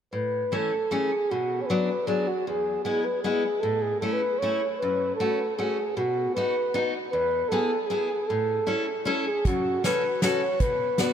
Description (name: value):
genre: alpine folk, alpine dance band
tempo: 155 BPM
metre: 3/4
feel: straight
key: A major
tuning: A4 = 440 Hz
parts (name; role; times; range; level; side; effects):
- dark flugelhorn; melody; 0.1-11.1 s; F#4 to C#5; -26 LUFS; right 1 dB; diffuse ambient delay
- picked steel-string acoustic guitar; accompaniment; 0.1-11.1 s; E2 to A4; -28 LUFS; left 2 dB; none
- natural country drum kit; drums; 9.4-11.1 s; hi-hat, kick drum, snare drum; -27 LUFS; equal; none
room: moderate huge ambient reverb, RT60 4.3 s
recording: dreamy mix soaked in reverb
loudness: -24 LUFS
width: side -8 dB against mid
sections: 0.1-9.4 A section; 9.4-11.1 B section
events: none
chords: 0.1 A; 1.3 Bm; 2.5 E; 3.6 A; 4.8 F#madd9; 6.0 B; 7.1 E; 8.3 A; 9.4 F#m; 10.6 Bm